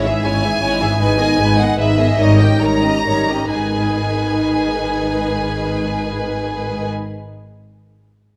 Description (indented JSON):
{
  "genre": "classical, dramatic, fast romantic movement for symphony orchestra",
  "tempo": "126-159 BPM",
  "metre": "3/4",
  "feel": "rubato",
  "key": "G# minor",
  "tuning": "A4 = 440 Hz",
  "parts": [
    { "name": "warm symphonic violin section", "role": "melody", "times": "0.0-6.9 s", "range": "D#5 to A#5", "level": "-24 LUFS", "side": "equal", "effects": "none" },
    { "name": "rich symphonic violin section", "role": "second line", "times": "0.0-6.9 s", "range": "E4 to E5", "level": "-25 LUFS", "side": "equal", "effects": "none" },
    { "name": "dark symphonic viola section", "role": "accompaniment", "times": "0.0-6.9 s", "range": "D#3 to E4", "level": "-24 LUFS", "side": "equal", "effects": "none" },
    { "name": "concert harp", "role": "arpeggios", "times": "0.0-7.6 s", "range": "G#2 to D#5", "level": "-25 LUFS", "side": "equal", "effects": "none" },
    { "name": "rich symphonic cello section", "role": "bass", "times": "0.0-6.9 s", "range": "G#2", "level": "-26 LUFS", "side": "equal", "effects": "none" },
    { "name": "rich symphonic double bass section", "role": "bass", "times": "0.0-6.9 s", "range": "G#1", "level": "-25 LUFS", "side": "equal", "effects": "none" }
  ],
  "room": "wet recital hall reverb, RT60 1.6 s",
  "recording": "none",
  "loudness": "-17 LUFS",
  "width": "mono",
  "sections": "0.0-3.5 A section; 3.5-6.1 B section",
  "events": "slowing down 0.4-3.5",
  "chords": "0.0 C#m/G#; 1.0 G#m; 2.2 D#7/G#; 3.5 G#m",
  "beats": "0.25 0.62 | 1.00 1.39 1.78 | 2.19 2.60 3.05 | 3.51 3.94 4.38 | 4.81 5.25 5.67"
}